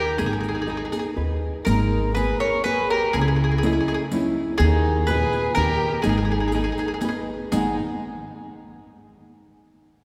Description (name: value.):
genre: italian folk, Italian serenade.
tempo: 123 BPM.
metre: 3/4.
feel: rubato.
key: G# harmonic minor.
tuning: A4 = 440 Hz.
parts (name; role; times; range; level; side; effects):
mandolin; melody; 0.0-7.8 s; G#4 to C#5; -28 LUFS; equal; none.
dark violin; second line; 0.0-7.8 s; D#4 to A#4; -32 LUFS; equal; none.
nylon-string guitar; accompaniment; 0.0-7.8 s; G#2 to D#5; -30 LUFS; equal; none.
upright bass; bass; 0.0-7.8 s; G#1 to D#2; -27 LUFS; equal; none.
riq; percussion; 0.2-7.8 s; none; -33 LUFS; equal; none.
room: wet church reverb, RT60 3.6 s.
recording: recorded in a church or concert hall.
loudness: -22 LUFS.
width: mono.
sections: 0.0-1.7 A section; 1.7-7.5 B section; 7.5-9.0 C section.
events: none.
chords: 0.2 G#m; 1.7 G#madd9; 3.1 C#madd9; 4.6 D#sus4; 5.6 D#; 6.0 G#m.